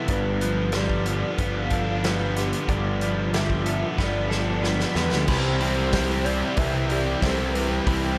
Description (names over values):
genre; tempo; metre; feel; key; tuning
rock, shoegaze and dream pop; 92 BPM; 4/4; straight; C major; A4 = 440 Hz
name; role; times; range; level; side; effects
direct-recorded clean electric guitar; arpeggios; 0.0-8.2 s; G4 to B5; -38 LUFS; equal; none
biting overdriven guitar; riff; 0.0-8.2 s; G2 to E4; -31 LUFS; equal; subtle chorus
biting overdriven guitar; riff; 0.0-8.2 s; G2 to G4; -32 LUFS; equal; reverse reverb
warm velvety synth lead; melody; 0.1-8.2 s; B4 to F5; -34 LUFS; equal; chorus, diffuse ambient delay
fuzz picked electric bass; bass; 0.1-8.2 s; G1 to E2; -29 LUFS; equal; overdrive
loose indie drum kit; drums; 0.1-8.0 s; crash cymbal, hi-hat, kick drum, snare drum; -30 LUFS; equal; none
cranked stack guitar; riff; 5.3-8.2 s; C3 to C4; -34 LUFS; equal; overdrive
room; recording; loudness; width
moderate lush hall reverb, RT60 2.7 s; dreamy mix soaked in reverb; -24 LUFS; mono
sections
0.0-5.3 A section; 5.3-8.2 B section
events
drum fill 4.0-5.3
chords
0.1 G7; 5.3 Cmaj7